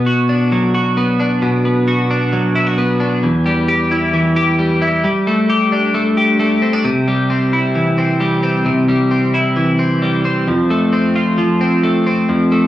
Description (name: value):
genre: indie pop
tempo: 133 BPM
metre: 4/4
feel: straight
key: unclear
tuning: A4 = 436 Hz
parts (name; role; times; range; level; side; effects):
- twelve-string electric guitar; solo; 0.0-12.7 s; E2 to G4; -13 LUFS; equal; none
room: moderate studio reverb, RT60 0.5 s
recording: home recording on cassette, small room reverb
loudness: -13 LUFS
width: side -13 dB against mid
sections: 0.0-6.8 A section; 6.8-12.7 B section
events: none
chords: 0.0 Bm; 3.2 Em; 5.0 Gsus2; 6.8 C; 10.5 F